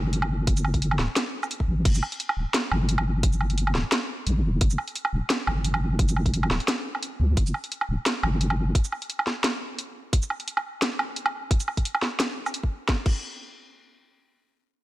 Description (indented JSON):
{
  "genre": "half-time drum and bass",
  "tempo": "174 BPM",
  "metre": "4/4",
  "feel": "swing 55% on 16ths, half-time",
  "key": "G minor",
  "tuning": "A4 = 436 Hz",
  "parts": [
    { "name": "deep soft wobble bass", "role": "bass", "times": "0.0-8.7 s", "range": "D1 to D2", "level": "-24 LUFS", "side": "equal", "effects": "chorus" },
    { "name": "drum and bass drum kit", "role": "drums", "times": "0.1-13.2 s", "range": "crash cymbal, hi-hat, shaker, snare drum, woodblock", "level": "-27 LUFS", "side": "right 1 dB", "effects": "none" },
    { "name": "electronic kick drum", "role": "drums", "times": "0.5-13.2 s", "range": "none", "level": "-23 LUFS", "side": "equal", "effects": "none" }
  ],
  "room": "light reverb",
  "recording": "none",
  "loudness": "-23 LUFS",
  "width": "side -17 dB against mid",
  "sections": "0.0-12.9 A section; 12.9-14.8 B section",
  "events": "drop 0.0-12.9",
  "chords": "none",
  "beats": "0.13 | 0.47 0.82 1.16 1.51 | 1.85 2.20 2.54 2.89 | 3.23 3.58 3.92 4.27 | 4.61 4.96 5.30 5.65 | 5.99 6.33 6.68 7.03 | 7.37 7.71 8.06 8.40 | 8.75 9.09 9.44 9.78 | 10.13 10.47 10.82 11.16 | 11.51 11.85 12.20 12.54 | 12.89"
}